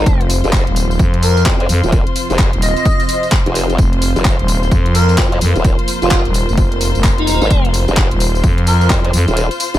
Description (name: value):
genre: bass house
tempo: 129 BPM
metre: 4/4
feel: swing 62% on 16ths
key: unclear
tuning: A4 = 439 Hz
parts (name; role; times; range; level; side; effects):
- airy dreamy lead; melody; 0.0-8.9 s; Eb4 to Eb5; -20 LUFS; left 1 dB; chorus, cassette tape, digital delay
- dark analog pad; sustained chords; 0.1-9.8 s; F3 to Bb5; -26 LUFS; right 2 dB; chorus, sidechain pumping
- formant-sweep wobble bass; bass; 0.0-9.8 s; Eb1 to F2; -16 LUFS; equal; chorus, tube saturation, sidechain pumping
- warm studio string section; texture; 0.0-9.8 s; F4 to C6; -23 LUFS; left 2 dB; sidechain pumping
- growling FM bass; bass; 0.1-9.3 s; Eb1 to F2; -15 LUFS; equal; tube saturation, sidechain pumping
- electronic kick drum; drums; 0.1-9.0 s; none; -15 LUFS; equal; none
- garage drum kit; drums; 0.1-9.8 s; handclaps, hi-hat, tambourine; -21 LUFS; left 1 dB; overdrive
room: digital ambience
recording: none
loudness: -11 LUFS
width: side -13 dB against mid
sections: 0.0-9.8 A section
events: break 9.4-9.8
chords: 0.0 F5